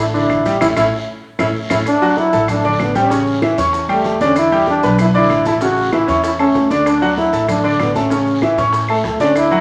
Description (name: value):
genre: latin, salsa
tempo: 192 BPM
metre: 4/4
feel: straight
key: D major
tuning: A4 = 440 Hz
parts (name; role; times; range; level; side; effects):
- warm trombone; melody; 0.0-9.6 s; A3 to F#4; -18 LUFS; equal; none
- clear grand piano; accompaniment; 0.0-9.6 s; C#3 to C#6; -19 LUFS; equal; none
- upright bass; bass; 0.0-9.6 s; A1 to A2; -25 LUFS; equal; none
- bongos; percussion; 0.1-9.5 s; none; -33 LUFS; equal; none
- congas; percussion; 0.1-9.6 s; none; -31 LUFS; equal; none
- maracas; percussion; 0.1-9.6 s; none; -38 LUFS; equal; none
- claves; percussion; 0.3-9.5 s; none; -32 LUFS; equal; none
- guiro; percussion; 0.3-9.6 s; none; -38 LUFS; equal; none
room: wet large studio reverb, RT60 1.2 s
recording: none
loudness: -15 LUFS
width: mono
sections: 0.0-1.9 A section; 1.9-9.6 A section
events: band accent 0.6-1.9; drum fill 1.1-1.9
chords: 0.0 D5; 0.6 A; 1.9 D; 3.1 A7; 4.4 Em7; 5.6 A; 6.9 D; 8.1 A